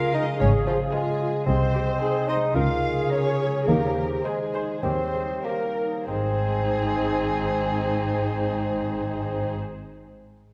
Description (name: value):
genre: cinematic, playful, whimsical film cue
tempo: 93-114 BPM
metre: 4/4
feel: straight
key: Ab major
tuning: A4 = 440 Hz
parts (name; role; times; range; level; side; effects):
- muted chamber violin section; melody; 0.0-9.5 s; G4 to C5; -36 LUFS; equal; none
- muted chamber violin section; second line; 0.0-9.5 s; F4 to F5; -37 LUFS; equal; none
- mellow bassoon; accompaniment; 0.0-9.5 s; F3 to F4; -30 LUFS; equal; none
- muted chamber viola section; accompaniment; 0.0-9.5 s; Eb4 to C5; -33 LUFS; equal; none
- mellow French horn section; sustained chords; 0.0-9.5 s; G4 to F5; -35 LUFS; equal; none
- concert harp; arpeggios; 0.0-10.0 s; Ab2 to Eb5; -33 LUFS; equal; none
- muted chamber cello section; bass; 0.4-9.5 s; Ab2 to Eb3; -33 LUFS; equal; none
- muted chamber double bass section; bass; 0.4-9.5 s; Ab1 to Eb2; -31 LUFS; equal; none
room: wet scoring stage reverb, RT60 1.8 s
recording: none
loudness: -25 LUFS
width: mono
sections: 0.0-6.1 A section; 6.1-10.5 B section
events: slowing down 0.4-6.1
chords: 0.0 Db; 1.5 Ab/C; 2.6 Bbm7/Db; 3.7 Ab/Eb; 4.8 Eb7; 6.1 Ab